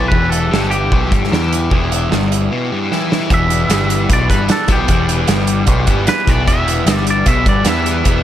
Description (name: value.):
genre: indie rock.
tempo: 151 BPM.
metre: 4/4.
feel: straight.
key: E minor.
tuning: A4 = 441 Hz.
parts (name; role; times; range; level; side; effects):
twangy electric guitar; melody; 0.0-8.2 s; G4 to E5; -20 LUFS; equal; spring reverb, digital delay.
overdriven electric guitar; riff; 0.0-8.2 s; E3 to G4; -23 LUFS; right 8 dB; lush chorus, digital delay.
sludgy distorted guitar; riff; 0.0-8.2 s; E2 to E4; -19 LUFS; left 6 dB; overdrive.
growling picked electric bass; bass; 0.0-8.2 s; E1 to E2; -18 LUFS; equal; overdrive.
loose indie drum kit; drums; 0.1-8.2 s; hi-hat, kick drum, snare drum; -16 LUFS; right 1 dB; none.
analog string pad; sustained chords; 3.3-8.2 s; E3 to B4; -29 LUFS; equal; ensemble chorus, phaser.
room: little or no reverb.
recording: none.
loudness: -12 LUFS.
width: side -11 dB against mid.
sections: 0.0-3.3 A section; 3.3-8.2 B section.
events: break 2.5-3.3; drum fill 2.9-3.3; clean electric guitar solo 3.3-8.2.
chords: 0.0 Em.